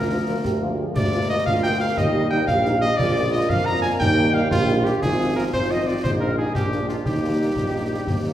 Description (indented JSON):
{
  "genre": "military-style march for wind band",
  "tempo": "118 BPM (dotted quarters)",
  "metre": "6/8",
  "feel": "straight",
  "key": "Eb major",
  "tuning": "A4 = 439 Hz",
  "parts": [
    { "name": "warm cornet", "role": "melody", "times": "0.0-8.3 s", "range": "F4 to Bb5", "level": "-25 LUFS", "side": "equal", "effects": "none" },
    { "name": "mellow euphonium", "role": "second line", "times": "0.0-8.3 s", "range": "D4 to Ab4", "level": "-29 LUFS", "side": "right 4 dB", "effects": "none" },
    { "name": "mellow woodwind section", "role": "second line", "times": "0.0-8.3 s", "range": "F4 to Bb5", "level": "-29 LUFS", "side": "left 1 dB", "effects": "none" },
    { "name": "clear trombone section", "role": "sustained chords", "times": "0.0-8.3 s", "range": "F3 to Eb4", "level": "-32 LUFS", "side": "right 2 dB", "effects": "none" },
    { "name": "warm tuba", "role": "bass", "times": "0.0-8.3 s", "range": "Ab1 to F2", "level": "-24 LUFS", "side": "right 1 dB", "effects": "none" },
    { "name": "warm French horn section", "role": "accompaniment", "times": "0.1-8.3 s", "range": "F3 to F4", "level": "-30 LUFS", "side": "left 2 dB", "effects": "none" },
    { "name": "concert snare drum, concert bass drum and clash cymbals", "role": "drums", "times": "0.4-8.3 s", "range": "none", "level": "-27 LUFS", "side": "left 1 dB", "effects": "none" }
  ],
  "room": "wet recital hall reverb, RT60 1.5 s",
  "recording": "heard from further back in the room",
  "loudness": "-19 LUFS",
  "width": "side -12 dB against mid",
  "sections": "0.0-8.3 A section",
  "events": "none",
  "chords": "0.0 Bb/D; 1.0 Bb7/D; 2.0 Eb; 3.0 Bb7; 4.0 Eb; 5.0 Fm/Ab; 6.0 Eb/Bb; 6.5 Bb7; 7.1 Eb"
}